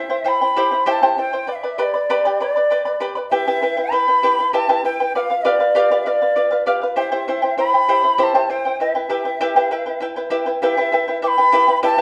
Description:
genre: andean folk, Andean ensemble.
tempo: 98 BPM.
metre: 3/4.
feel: straight.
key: E minor.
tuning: A4 = 445 Hz.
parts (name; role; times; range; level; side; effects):
bright reedy large quena; melody; 0.0-12.0 s; D5 to D6; -20 LUFS; equal; none.
charango; accompaniment; 0.0-12.0 s; E4 to B5; -21 LUFS; equal; none.
room: wet studio reverb, RT60 0.6 s.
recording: band playing live in one room.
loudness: -18 LUFS.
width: mono.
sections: 0.0-10.6 A section; 10.6-12.0 A section.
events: none.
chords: 0.0 C; 1.5 G; 3.3 Em; 5.1 G7; 7.0 C; 8.8 Em.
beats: 0.26 0.87 | 1.48 2.09 2.70 | 3.31 3.92 4.54 | 5.14 5.75 6.36 | 6.97 7.58 8.19 | 8.79 9.40 10.01 | 10.61 11.22 11.82.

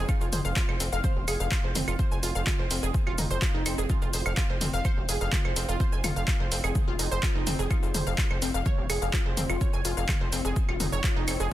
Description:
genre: melodic techno.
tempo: 126 BPM.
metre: 4/4.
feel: straight.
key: F minor.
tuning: A4 = 441 Hz.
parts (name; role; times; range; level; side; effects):
gritty driven synth bass; bass; 0.0-11.5 s; Eb1 to F1; -31 LUFS; equal; sidechain pumping.
analog pluck; arpeggios; 0.1-11.4 s; C4 to Ab5; -32 LUFS; equal; chorus, sidechain pumping, digital delay.
electronic kick drum; drums; 0.1-11.1 s; none; -28 LUFS; equal; overdrive.
punchy analog drum machine; drums; 0.1-11.5 s; claves, handclaps, hi-hat, shaker, toms; -31 LUFS; equal; overdrive.
room: digital ambience.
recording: dense, heavily limited modern master.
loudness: -24 LUFS.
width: side -14 dB against mid.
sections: 0.0-11.5 A section.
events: none.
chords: 0.1 F5; 7.7 Db.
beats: | 0.09 0.56 1.04 1.52 | 1.99 2.47 2.94 3.42 | 3.90 4.37 4.85 5.33 | 5.80 6.28 6.75 7.23 | 7.71 8.18 8.66 9.13 | 9.61 10.09 10.56 11.04.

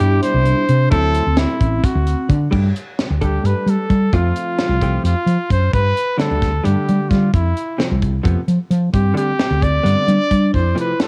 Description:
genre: progressive instrumental, band music in an uneven meter.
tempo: 262 BPM (eighths).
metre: 7/8.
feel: straight.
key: G mixolydian.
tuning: A4 = 440 Hz.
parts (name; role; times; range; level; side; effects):
clear trumpet; melody; 0.0-11.1 s; E4 to D5; -23 LUFS; equal; tape echo.
vibraphone with medium mallets; second line; 0.0-2.5, 8.9-11.1 s; C4 to E4; -26 LUFS; equal; none.
vintage hollow-body jazz guitar; accompaniment; 0.0-10.9 s; B2 to A4; -25 LUFS; equal; none.
woody fretless electric bass; bass; 0.0-10.7 s; A1 to G3; -19 LUFS; equal; none.
tight funk drum kit; drums; 0.0-11.1 s; crash cymbal, hi-hat, kick drum, snare drum; -23 LUFS; equal; cassette tape.
room: little or no reverb.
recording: home recording on cassette.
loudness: -17 LUFS.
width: mono.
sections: 0.0-2.5 A section; 2.5-11.1 B section.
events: none.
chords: 0.0 Cmaj9; 0.9 D9; 2.5 Gsus2; 4.1 F; 5.7 Gsus2; 7.3 F; 8.9 Gsus2; 10.5 F.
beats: 0.00 0.23 0.46 0.69 | 0.92 1.15 1.38 1.60 1.83 2.06 2.29 | 2.52 2.75 2.98 3.21 3.44 3.67 3.90 | 4.13 4.36 4.58 4.81 5.04 5.27 5.50 | 5.73 5.96 6.19 6.42 6.65 6.88 7.11 | 7.33 7.56 7.79 8.02 8.25 8.48 8.71 | 8.94 9.17 9.39 9.62 9.85 10.08 10.31 | 10.54 10.77 11.00.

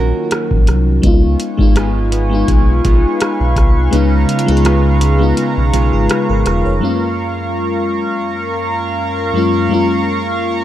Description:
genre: contemporary R&B.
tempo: 83 BPM.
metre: 4/4.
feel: swing 54% on 16ths.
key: F# major.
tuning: A4 = 435 Hz.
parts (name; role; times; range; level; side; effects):
FM electric piano with soft pad layer; accompaniment; 0.0-10.6 s; F#2 to C#5; -17 LUFS; left 3 dB; chorus.
nylon-string guitar; arpeggios; 0.0-7.4 s; C#3 to A#4; -21 LUFS; right 6 dB; digital delay.
sub bass with octave; bass; 0.0-6.8 s; E1 to C#2; -14 LUFS; equal; none.
booming analog drum machine; drums; 0.3-6.6 s; hi-hat, kick drum, rim click; -15 LUFS; equal; none.
chorused pulse-width pad; sustained chords; 1.0-10.6 s; A#4 to C#6; -20 LUFS; right 2 dB; none.
room: digital ambience.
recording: dark, warm production.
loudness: -12 LUFS.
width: side -12 dB against mid.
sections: 0.0-6.8 A section; 6.8-10.6 B section.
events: kick muted 3.9-6.8.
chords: 0.0 D#m7; 1.0 C#7; 6.8 F#maj7.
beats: 0.31 | 1.03 1.76 2.48 3.20 | 3.93 4.65 5.37 6.10 | 6.82 7.54 8.26 8.99 | 9.71 10.43.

